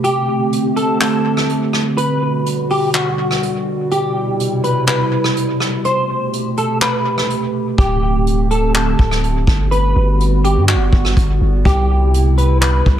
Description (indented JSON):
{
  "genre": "hip hop, atmospheric cloud-rap",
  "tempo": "124 BPM",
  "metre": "4/4",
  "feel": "half-time",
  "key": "unclear",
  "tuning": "A4 = 440 Hz",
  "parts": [
    { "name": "semi-hollow electric guitar", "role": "melody", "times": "0.0-13.0 s", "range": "F#4 to C5", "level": "-20 LUFS", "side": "equal", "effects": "ensemble chorus, low-pass filter, analog delay" },
    { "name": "warbly tape-like pad", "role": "sustained chords", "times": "0.0-13.0 s", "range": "B2 to G4", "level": "-19 LUFS", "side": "right 1 dB", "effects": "chorus, built-in reverb, sidechain pumping" },
    { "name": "soft brush drum kit", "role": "drums", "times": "0.0-13.0 s", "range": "handclaps, hi-hat, kick drum, rim click", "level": "-19 LUFS", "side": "equal", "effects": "none" },
    { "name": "long sustained 808-style bass", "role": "bass", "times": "7.8-13.0 s", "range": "D1 to G2", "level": "-15 LUFS", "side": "equal", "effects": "none" }
  ],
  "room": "studio reverb",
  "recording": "echo-heavy mix",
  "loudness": "-14 LUFS",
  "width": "side -10 dB against mid",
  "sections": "0.0-13.0 A section",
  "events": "break 0.0-7.8",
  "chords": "0.0 D7sus4; 2.0 Gmaj7; 3.9 Cmaj7; 5.8 Am9; 7.8 D7sus4; 9.7 Gmaj7; 11.7 Cmaj7",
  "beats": "| 0.04 0.52 1.01 1.49 | 1.98 2.46 2.94 3.43 | 3.91 4.39 4.88 5.36 | 5.85 6.33 6.82 7.30 | 7.78 8.27 8.75 9.23 | 9.72 10.20 10.69 11.17 | 11.65 12.14 12.62"
}